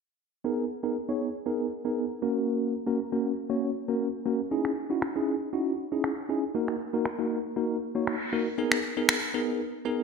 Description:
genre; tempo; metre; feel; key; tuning
dance-pop; 118 BPM; 4/4; straight; unclear; A4 = 440 Hz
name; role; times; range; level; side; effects
bell-like tine electric piano; accompaniment; 0.4-10.0 s; A#3 to C#5; -27 LUFS; equal; fast stereo tremolo
electronic finger snaps; drums; 4.6-9.2 s; none; -30 LUFS; equal; gated reverb
room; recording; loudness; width
wet lush hall reverb, RT60 1.6 s; bright 1980s-style digital production, low-pass filter; -27 LUFS; side -5 dB against mid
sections
0.4-8.6 A section; 8.6-10.0 B section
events
filter sweep 0.4-8.6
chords
0.4 G#madd9; 2.2 F#; 4.5 C#madd9; 6.5 D#m; 8.6 G#madd9

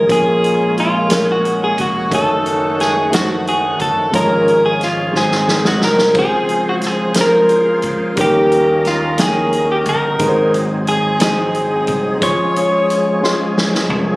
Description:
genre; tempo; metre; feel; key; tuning
slow gospel; 59 BPM (dotted quarters); 6/8; straight; Db major; A4 = 440 Hz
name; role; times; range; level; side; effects
bright saxophone section; melody; 0.0-13.6 s; Ab3 to Db5; -19 LUFS; left 1 dB; none
clean electric guitar; melody; 0.0-13.5 s; F4 to Db5; -18 LUFS; equal; none
dark baby grand piano; accompaniment; 0.0-14.2 s; Ab2 to C6; -19 LUFS; equal; none
overdriven tonewheel organ; sustained chords; 0.0-14.2 s; Db3 to C5; -22 LUFS; right 1 dB; slow rotary speaker, chorus vibrato
fingered electric bass; bass; 0.0-14.2 s; F1 to Eb2; -25 LUFS; equal; none
swinging big-band drum kit; drums; 0.1-14.1 s; hi-hat, kick drum, snare drum, splash cymbal, toms; -21 LUFS; equal; none
room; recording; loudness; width
light reverb, small room ambience; recorded on a phone in the room, studio reverb; -12 LUFS; side -21 dB against mid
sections
0.0-14.2 A section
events
drum fill 5.1-6.2, 13.2-14.2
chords
0.1 Bbm7; 2.1 Gbm6; 4.1 Db/Ab; 5.1 Ab7; 6.2 Dbmaj7; 8.2 Eb7; 10.2 Ab7; 12.2 Dbmaj7

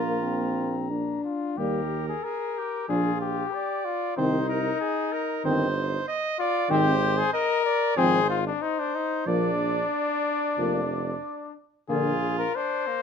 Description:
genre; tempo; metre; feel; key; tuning
classical, brass quintet; 92 BPM; 4/4; rubato; unclear; A4 = 440 Hz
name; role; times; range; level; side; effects
warm cornet; melody; 0.0-13.0 s; D4 to Bb5; -28 LUFS; left 9 dB; none
bright trumpet; second line; 0.0-13.0 s; Bb3 to Eb5; -30 LUFS; right 6 dB; none
clear French horn; accompaniment; 0.0-12.1 s; Bb3 to D4; -28 LUFS; left 4 dB; none
mellow trombone; accompaniment; 0.0-12.1 s; D3 to Bb3; -30 LUFS; right 2 dB; none
warm tuba; bass; 0.0-12.4 s; F1 to Eb2; -30 LUFS; right 4 dB; none
room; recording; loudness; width
light reverb; none; -24 LUFS; side -6 dB against mid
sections
0.0-1.6 A section; 1.6-13.0 B section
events
none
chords
0.2 Bb; 1.6 Eb; 2.9 Bb; 4.2 Cm; 6.7 Ab; 8.0 Fm/Ab; 9.3 Bb

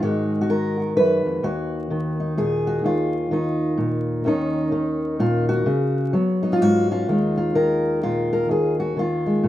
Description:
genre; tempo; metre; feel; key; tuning
folk, solo fingerstyle acoustic guitar; 128 BPM; 3/4; swing 62% on 8ths; Eb minor; A4 = 441 Hz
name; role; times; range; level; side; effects
fingerpicked steel-string acoustic guitar; solo; 0.0-9.5 s; Eb2 to Cb5; -19 LUFS; equal; none
room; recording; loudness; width
light reverb, small room ambience; rough home demo mix, vinyl crackle; -19 LUFS; side -13 dB against mid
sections
0.0-7.1 A section; 7.1-9.5 B section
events
none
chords
0.0 Abm7; 1.4 Ebmadd9; 4.3 Eb5; 5.7 Db7sus4; 7.1 Ebsus2

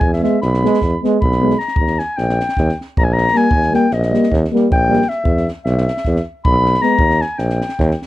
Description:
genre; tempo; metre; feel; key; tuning
balkan folk, Balkan brass band; 310 BPM (eighths); 9/8; straight; unclear; A4 = 444 Hz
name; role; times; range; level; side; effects
dark clarinet; second line; 0.0-8.0 s; Eb5 to B5; -18 LUFS; left 2 dB; none
warm tuba; bass; 0.0-7.9 s; Bb1 to E2; -17 LUFS; equal; none
compact cocktail drum kit; percussion; 0.0-8.1 s; kick drum, snare drum; -20 LUFS; equal; none
dark euphonium; accompaniment; 0.2-7.0 s; Bb3 to B3; -18 LUFS; left 4 dB; none
mellow trombone; accompaniment; 0.2-7.0 s; G3 to G#3; -20 LUFS; right 6 dB; none
room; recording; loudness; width
studio reverb; dry, close 1970s-style studio recording; -13 LUFS; side -15 dB against mid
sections
0.0-8.1 A section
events
clarinet solo 0.0-8.1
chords
0.0 E; 1.8 Eb; 5.3 E5; 7.0 Eb

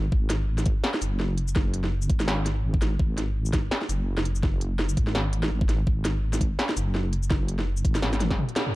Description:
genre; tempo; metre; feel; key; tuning
half-time drum and bass; 167 BPM; 4/4; swing 57% on 16ths, half-time; unclear; A4 = 440 Hz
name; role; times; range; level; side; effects
deep soft wobble bass; bass; 0.0-8.4 s; F#1 to G#1; -26 LUFS; equal; chorus
electronic kick drum; drums; 0.1-8.4 s; none; -25 LUFS; equal; overdrive
industrial drum kit; drums; 0.3-8.7 s; hi-hat, shaker, snare drum, toms; -29 LUFS; equal; none
room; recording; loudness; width
little or no reverb; dark, warm production; -23 LUFS; side -18 dB against mid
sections
0.0-8.7 A section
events
drop 0.0-8.7; drum fill 8.0-8.7; break 8.4-8.7; band accent 8.6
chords
none

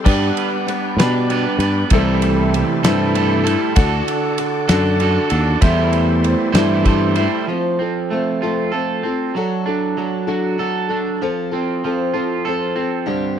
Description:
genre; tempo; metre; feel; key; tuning
folk rock and heartland rock; 64 BPM (dotted quarters); 6/8; straight; unclear; A4 = 439 Hz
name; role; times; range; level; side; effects
bright upright piano; accompaniment; 0.0-7.5 s; G4 to A5; -28 LUFS; left 9 dB; none
picked steel-string acoustic guitar; accompaniment; 0.0-13.4 s; E2 to C5; -22 LUFS; left 7 dB; none
tonewheel organ; sustained chords; 0.0-7.5 s; D4 to D5; -29 LUFS; equal; slow rotary speaker, chorus vibrato
electric guitar at the edge of break-up; riff; 0.0-13.4 s; E2 to C5; -20 LUFS; right 7 dB; wide subtle chorus
fingered electric bass; bass; 0.1-7.3 s; C2 to B2; -18 LUFS; equal; none
damped 70s drum kit; drums; 0.1-7.3 s; crash cymbal, kick drum, ride cymbal, snare drum; -17 LUFS; equal; none
room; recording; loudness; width
little or no reverb; dry, close 1970s-style studio recording; -15 LUFS; side -9 dB against mid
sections
0.0-7.5 A section; 7.5-13.4 B section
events
upright piano fill 6.6-7.5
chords
0.1 G; 1.9 C6; 3.8 D; 5.6 C6/E; 7.5 F; 9.3 D/F#; 11.2 F

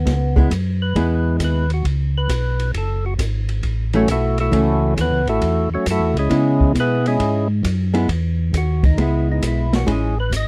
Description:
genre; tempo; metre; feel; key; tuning
soul jazz organ trio; 135 BPM; 4/4; swing 67% on 8ths; C# minor; A4 = 440 Hz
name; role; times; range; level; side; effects
percussive tonewheel organ; melody; 0.0-10.5 s; F#3 to D#5; -24 LUFS; equal; slow rotary speaker, overdrive
mellow tonewheel organ; bass; 0.0-10.5 s; F#1 to C#3; -22 LUFS; equal; slow rotary speaker
open jazz drum kit; drums; 0.1-10.5 s; hi-hat, kick drum, ride cymbal, snare drum; -24 LUFS; equal; none
archtop guitar, miked and amplified; accompaniment; 0.4-10.1 s; E3 to E4; -23 LUFS; equal; none
room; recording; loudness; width
little or no reverb; dry, close 1970s-style studio recording; -19 LUFS; mono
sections
0.0-10.5 A section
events
tonewheel organ solo 0.0-10.5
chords
0.0 C#m7; 2.7 F#m7; 6.3 C#m7; 9.9 Amaj7

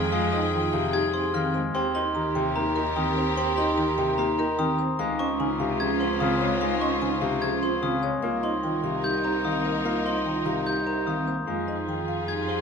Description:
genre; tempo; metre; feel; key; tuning
classical, minimalist pattern music; 148 BPM; 4/4; straight; F minor; A4 = 441 Hz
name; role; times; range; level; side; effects
marimba with medium mallets; melody; 0.0-12.6 s; G4 to Bb5; -31 LUFS; left 5 dB; none
warm French horn; second line; 0.0-12.6 s; Eb4 to Ab4; -35 LUFS; right 4 dB; none
warm grand piano; accompaniment; 0.0-12.6 s; C3 to Eb4; -30 LUFS; left 2 dB; none
rich symphonic string section; sustained chords; 0.0-12.6 s; Eb4 to G5; -33 LUFS; left 3 dB; none
rich cello; bass; 0.0-12.6 s; C2 to F2; -34 LUFS; right 4 dB; none
glockenspiel with soft plastic mallets; arpeggios; 0.1-12.6 s; Bb5 to Ab6; -29 LUFS; left 1 dB; none
vibraphone with soft mallets; arpeggios; 0.1-12.6 s; C4 to Bb4; -30 LUFS; right 5 dB; none
room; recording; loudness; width
wet large studio reverb, RT60 1.3 s; none; -23 LUFS; side -6 dB against mid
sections
0.0-12.6 A section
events
none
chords
0.0 Fmadd9; 1.7 Eb; 5.0 Dbmaj7; 8.2 Cm7; 11.5 Fmadd9

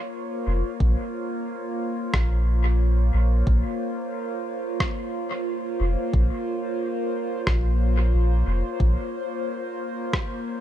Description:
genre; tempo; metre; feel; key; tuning
ambient dub; 90 BPM; 4/4; swing 54% on 16ths; Bb minor; A4 = 439 Hz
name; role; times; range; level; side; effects
warbly tape-like pad; sustained chords; 0.0-10.6 s; Bb3 to Db5; -28 LUFS; equal; chorus, built-in reverb, phaser
soft dub sub bass; bass; 0.5-9.0 s; F1 to Bb1; -20 LUFS; equal; tube saturation
electronic kick drum; drums; 0.8-10.3 s; none; -25 LUFS; equal; overdrive, small room ambience
electronic rim click; drums; 2.1-10.3 s; none; -31 LUFS; equal; small room ambience, dub echo
room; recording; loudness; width
little or no reverb; echo-heavy mix, nothing above 11.0 kHz; -22 LUFS; side -11 dB against mid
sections
0.0-10.6 A section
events
none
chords
0.0 Bbmadd9

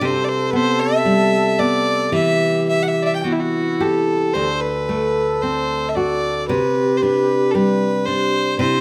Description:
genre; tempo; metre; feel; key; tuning
celtic folk, Celtic slow air; 52-59 BPM; 4/4; rubato; unclear; A4 = 440 Hz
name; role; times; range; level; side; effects
warm fiddle; melody; 0.0-8.8 s; E4 to G5; -22 LUFS; equal; none
mellow hollow baroque flute; second line; 0.0-8.8 s; E4 to A4; -25 LUFS; equal; none
nylon-string guitar; accompaniment; 0.0-8.8 s; D2 to G4; -22 LUFS; equal; none
room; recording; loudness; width
light reverb; close, detailed microphones; -18 LUFS; mono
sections
0.0-4.4 A section; 4.4-8.8 B section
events
none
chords
0.0 Cmaj7; 4.4 D7; 6.5 Csus2

